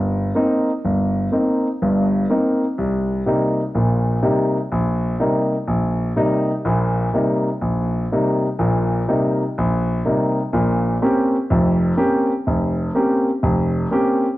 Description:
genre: jazz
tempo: 124 BPM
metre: 4/4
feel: swing 66% on 8ths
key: Bb dorian from 10.5 s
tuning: A4 = 440 Hz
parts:
  - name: warm grand piano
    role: solo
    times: 0.0-14.3 s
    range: F1 to G4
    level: -17 LUFS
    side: equal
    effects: cassette tape
room: light reverb, studio reverb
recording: home recording on cassette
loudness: -17 LUFS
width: side -17 dB against mid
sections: 0.0-10.5 A section; 10.5-14.4 B section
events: none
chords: 0.0 Cm7; 2.8 Eb; 10.5 Bbm69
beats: 0.35 | 0.84 1.32 1.81 2.29 | 2.78 3.26 3.74 4.23 | 4.71 5.20 5.68 6.17 | 6.65 7.13 7.62 8.10 | 8.59 9.07 9.55 10.04 | 10.52 11.01 11.49 11.97 | 12.46 12.94 13.43 13.91

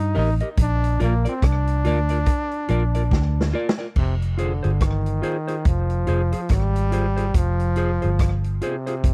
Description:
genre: roots reggae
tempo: 71 BPM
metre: 4/4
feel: swing 60% on 16ths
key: unclear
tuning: A4 = 440 Hz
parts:
  - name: brilliant trombone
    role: melody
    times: 0.0-9.1 s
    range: C3 to Eb4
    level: -29 LUFS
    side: equal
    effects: dub echo
  - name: vintage muted fingered electric bass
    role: bass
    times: 0.0-9.1 s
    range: F1 to G2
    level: -23 LUFS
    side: equal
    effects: none
  - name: semi-hollow electric guitar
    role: accompaniment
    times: 0.1-8.9 s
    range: F4 to Eb5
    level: -31 LUFS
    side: equal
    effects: dub echo
  - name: vintage drum kit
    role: drums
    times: 0.1-9.1 s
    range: crash cymbal, hi-hat, kick drum, rim click, snare drum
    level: -24 LUFS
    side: equal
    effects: none
room: little or no reverb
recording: dry, close 1970s-style studio recording, vinyl crackle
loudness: -22 LUFS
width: mono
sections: 0.0-4.0 A section; 4.0-9.1 B section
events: trombone solo 0.0-4.0; drum fill 3.1-4.0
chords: 0.0 Eb; 0.6 Bb; 4.0 Fm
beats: | 0.58 1.43 2.27 3.12 | 3.96 4.81 5.66 6.50 | 7.35 8.19 9.04

